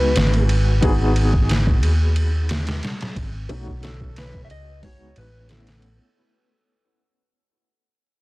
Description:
trip hop; 90 BPM; 4/4; swing 53% on 16ths; G# phrygian; A4 = 441 Hz
mellow electric guitar; melody; 0.0-6.0 s; A4 to E5; -28 LUFS; left 1 dB; tape echo
felt-muted upright piano; accompaniment; 0.0-6.2 s; G#3 to G#4; -26 LUFS; equal; tremolo, vintage 12-bit sampler grit, tape echo
hollow-body short-scale fingered electric bass; bass; 0.0-6.0 s; G#1 to D#2; -20 LUFS; equal; tube saturation
trip hop sampler-style drum kit; drums; 0.2-6.0 s; hi-hat, kick drum, ride cymbal, snare drum; -23 LUFS; equal
little or no reverb; dense, heavily limited modern master, vinyl crackle; -17 LUFS; side -21 dB against mid
0.0-6.2 A section
fade-out 0.0-6.2
0.0 C#7sus4; 0.8 G#m7; 3.5 B7; 4.8 C#7sus4; 5.5 A

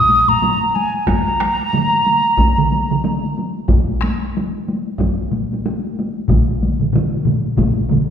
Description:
japanese traditional, taiko drum ensemble; 92 BPM; 4/4; swing 60% on 16ths; A4 = 440 Hz
mellow hollow wooden piccolo; melody; 0.0-3.4 s; Ab5 to Eb6; -15 LUFS; right 1 dB
taiko ensemble; percussion; 0.1-8.1 s; -21 LUFS; left 1 dB
taiko ensemble; percussion; 0.3-8.1 s; -21 LUFS; left 4 dB
taiko ensemble; percussion; 1.1-8.1 s; -21 LUFS; right 5 dB
taiko ensemble; percussion; 1.1-7.8 s; -20 LUFS; equal
wet scoring stage reverb, RT60 1.4 s; recorded in a church or concert hall, faint mains hum; -15 LUFS; side -8 dB against mid
0.0-8.1 A section

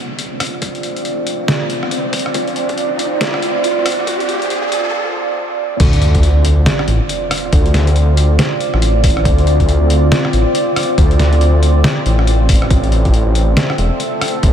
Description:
deep dubstep; 139 BPM; 4/4; swing 61% on 16ths, half-time; D minor; A4 = 440 Hz
deep dark ambient pad; sustained chords; 0.0-14.5 s; C4 to E5; -18 LUFS; right 1 dB; chorus, built-in reverb
riser and sub drop; sound effects; 1.1-7.5 s; -24 LUFS; equal
trip hop sampler-style drum kit; drums; 0.2-14.5 s; crash cymbal, hi-hat, rim click, snare drum; -20 LUFS; left 1 dB
electronic kick drum; drums; 0.6-14.5 s; -14 LUFS; equal; high-pass filter on kick, high-pass filter on room
dark detuned saw bass; bass; 5.8-14.5 s; E1 to D2; -12 LUFS; equal
moderate huge ambient reverb, RT60 8.1 s; dreamy mix soaked in reverb, high-pass filter; -12 LUFS; side -9 dB against mid
0.0-5.8 A section; 5.8-14.5 B section
build-up 0.0-5.8; riser 1.1-4.9; break 4.9-5.8; drop 5.8-14.5; impact 5.8-7.5
0.0 Dm7; 12.7 Am

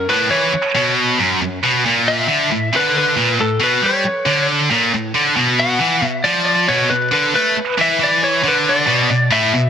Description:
rock; 136 BPM; 4/4; straight; A4 = 439 Hz
lightly driven lead guitar; melody; 0.0-9.7 s; A4 to F#5; -18 LUFS; left 2 dB; tape echo
scooped high-gain guitar; riff; 0.0-9.7 s; F#2 to A3; -15 LUFS; equal; distortion
light reverb; dense, heavily limited modern master; -13 LUFS; side -8 dB against mid
0.0-8.9 A section
0.0 F#5; 1.8 A5; 5.4 Bm

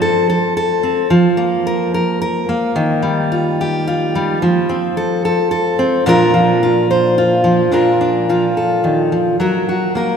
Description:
folk; 109 BPM; 3/4; straight; Bb major; A4 = 440 Hz
fingerpicked steel-string acoustic guitar; solo; 0.0-10.2 s; Bb2 to C5; -13 LUFS; equal
wet church reverb, RT60 3.2 s; recorded in a church or concert hall; -13 LUFS; side -7 dB against mid
0.0-7.7 A section; 7.7-10.2 B section
0.0 F; 1.1 Fsus4; 2.8 Ebadd9; 4.4 F; 6.1 Bbadd9; 7.7 Bb; 9.4 Gb

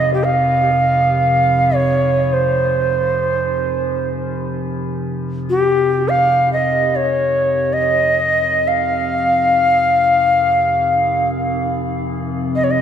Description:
world meditative, free-time meditation music; free time; A4 = 440 Hz
bright Native American-style cedar flute; melody; 0.0-12.8 s; G4 to F5; -15 LUFS; equal; tape echo
metallic inharmonic drone; drone; 0.0-12.8 s; F2 to C3; -21 LUFS; equal; chorus, built-in reverb
wet echo chamber reverb, RT60 2.1 s; echo-heavy mix; -14 LUFS; side -8 dB against mid
0.0-12.8 A section

